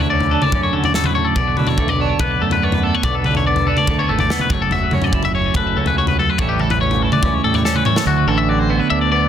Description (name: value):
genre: math rock and midwest emo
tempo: 143 BPM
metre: 4/4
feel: straight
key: unclear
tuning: A4 = 440 Hz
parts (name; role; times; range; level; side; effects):
- twelve-string electric guitar; accompaniment; 0.0-9.3 s; D2 to E4; -20 LUFS; right 8 dB; plate reverb
- twangy electric guitar; arpeggios; 0.0-9.3 s; F#4 to E5; -19 LUFS; left 7 dB; digital delay, plate reverb
- growling fingered electric bass; bass; 0.0-9.3 s; F#1 to D3; -22 LUFS; equal; overdrive
- modern studio drum kit; drums; 0.2-8.1 s; kick drum, snare drum, toms; -20 LUFS; left 1 dB; none
room: light reverb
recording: dense, heavily limited modern master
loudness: -14 LUFS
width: side -9 dB against mid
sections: 0.0-8.1 A section; 8.1-9.3 B section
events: drum fill 7.6-8.1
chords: 0.0 Dmaj9; 1.4 Bm7; 4.5 F#m7; 6.4 A7; 8.1 D6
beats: 0.10 0.52 0.94 | 1.36 1.78 2.20 2.62 | 3.04 3.46 3.88 4.30 | 4.71 5.13 5.55 5.97 | 6.39 6.81 7.23 7.65 | 8.07 8.49 8.90